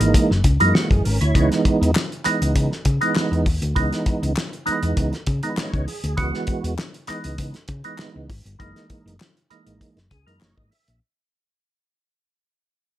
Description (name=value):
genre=funk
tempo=99 BPM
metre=4/4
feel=straight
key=C# dorian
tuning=A4 = 440 Hz
part: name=percussive tonewheel organ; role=stabs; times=0.0-11.0 s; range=D#3 to E5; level=-22 LUFS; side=right 3 dB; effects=chorus vibrato, slow rotary speaker
part: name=hollow-body short-scale fingered electric bass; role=bass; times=0.0-11.0 s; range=F#1 to C#3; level=-22 LUFS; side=left 1 dB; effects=none
part: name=cloth-damped thuddy drum kit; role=drums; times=0.0-11.0 s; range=hi-hat, kick drum, snare drum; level=-23 LUFS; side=left 1 dB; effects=none
part: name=group handclap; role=percussion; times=2.0-10.6 s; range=none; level=-30 LUFS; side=left 6 dB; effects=none
room=light reverb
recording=none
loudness=-18 LUFS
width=side -13 dB against mid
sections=0.0-11.0 A section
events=fade-out 0.0-11.0; tonewheel organ fill 5.3-6.2, 9.8-11.0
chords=0.0 F#13; 1.3 C#m7; 8.6 F#13